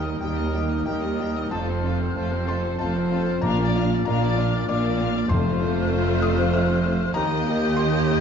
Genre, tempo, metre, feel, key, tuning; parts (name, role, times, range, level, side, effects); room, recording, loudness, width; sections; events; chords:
cinematic, emotional film score for orchestra; 95 BPM; 3/4; rubato; A4 = 441 Hz
rich studio violin section; melody; 0.0-8.2 s; A4 to G5; -33 LUFS; left 6 dB
dark clarinet; second line; 0.0-8.2 s; A3 to Eb4; -33 LUFS; left 2 dB
rich studio violin section; second line; 0.0-8.2 s; D4 to Bb4; -36 LUFS; left 4 dB
small flute group; second line; 0.0-8.2 s; Eb6 to G6; -34 LUFS; left 2 dB
warm oboe; second line; 0.0-8.2 s; Bb4 to Eb5; -34 LUFS; left 1 dB
felt-muted upright piano; accompaniment; 0.0-8.2 s; Eb2 to F6; -29 LUFS; left 2 dB
rich studio viola section; accompaniment; 0.0-8.2 s; G3 to D4; -33 LUFS; right 1 dB
mellow French horn section; sustained chords; 0.0-8.2 s; A3 to G4; -30 LUFS; left 6 dB
dark studio double bass section; bass; 0.0-8.2 s; F1 to Eb2; -27 LUFS; right 4 dB
rich studio cello section; bass; 0.0-8.2 s; Eb2 to Bb2; -27 LUFS; right 4 dB
timpani; percussion; 3.4-6.2 s; F2 to Bb2; -28 LUFS; left 2 dB
moderate scoring stage reverb, RT60 1.5 s; dark, warm production, nothing above 7.8 kHz; -20 LUFS; side -7 dB against mid
0.0-8.2 A section
0.0 Eb; 1.5 F; 3.4 Bb; 5.3 F; 7.2 Eb